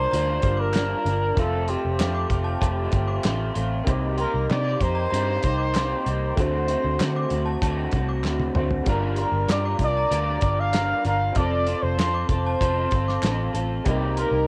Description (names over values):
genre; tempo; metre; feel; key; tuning
indie pop, bedroom pop; 96 BPM; 4/4; straight; G minor; A4 = 440 Hz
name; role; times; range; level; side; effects
breathy trumpet; melody; 0.0-14.5 s; G4 to F5; -28 LUFS; equal; lush chorus, cassette tape, analog delay
synth chime; second line; 0.0-14.3 s; A5 to D6; -39 LUFS; equal; ensemble chorus, lush chorus, cassette tape, analog delay
clear upright piano; accompaniment; 0.0-14.5 s; G3 to C5; -37 LUFS; equal; none
electric guitar through a small old amp; accompaniment; 0.0-14.5 s; G2 to Bb4; -31 LUFS; equal; analog chorus, warbly pitch drift, cassette tape
vintage muted picked electric bass; bass; 0.0-14.4 s; F1 to D3; -28 LUFS; equal; none
cloth-damped thuddy drum kit; drums; 0.1-14.3 s; hi-hat, kick drum, snare drum, toms; -28 LUFS; equal; cassette tape
group handclap; percussion; 0.7-13.4 s; none; -38 LUFS; equal; none
room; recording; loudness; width
light reverb; home recording on cassette; -23 LUFS; mono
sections
0.0-14.5 A section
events
drum fill 8.2-8.9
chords
0.0 Gm7; 1.4 F; 3.9 Cm7; 6.4 D7; 8.9 Gm7; 11.4 F; 13.9 Cm7